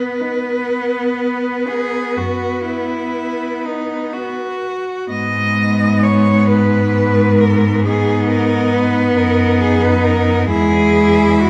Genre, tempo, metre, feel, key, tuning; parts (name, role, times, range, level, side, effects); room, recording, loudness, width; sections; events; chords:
classical, lyrical piece for cello ensemble; 39-46 BPM (dotted quarters); 12/8; rubato; A4 = 440 Hz
clear cello; melody; 0.0-11.5 s; F#4 to D#5; -21 LUFS; equal
rich cello; accompaniment; 0.0-11.5 s; G#3 to B3; -20 LUFS; equal
clear cello; bass; 0.0-11.5 s; E2 to B2; -20 LUFS; equal
clear cello; second line; 0.2-11.5 s; B3 to G#4; -24 LUFS; equal
wet recital hall reverb, RT60 1.4 s; -16 LUFS; mono
0.0-5.1 A section; 5.1-11.5 B section
0.0 B5; 5.1 G#m; 10.5 E